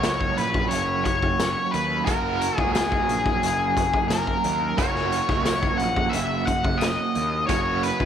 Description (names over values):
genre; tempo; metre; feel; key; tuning
psychedelic rock; 88 BPM; 4/4; straight; F# major; A4 = 437 Hz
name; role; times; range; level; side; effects
octave-fuzz lead guitar; melody; 0.0-8.1 s; G#4 to F#5; -24 LUFS; left 3 dB; distortion, tape echo
biting overdriven guitar; riff; 0.0-8.1 s; F#3 to F#4; -28 LUFS; right 11 dB; tremolo
fuzz picked electric bass; bass; 0.0-8.1 s; F#1 to D#2; -30 LUFS; left 1 dB; overdrive
raw garage drum kit; drums; 0.0-8.1 s; hi-hat, kick drum, snare drum; -26 LUFS; left 1 dB; none
tambourine; percussion; 0.0-7.0 s; none; -41 LUFS; left 19 dB; none
room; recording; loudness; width
light reverb, small room ambience; 1960s-style stereo with parts hard left and right; -21 LUFS; side -8 dB against mid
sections
0.0-8.1 A section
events
none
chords
0.0 F#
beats
0.04 0.71 1.39 | 2.07 2.75 3.43 4.10 | 4.78 5.46 6.14 6.82 | 7.49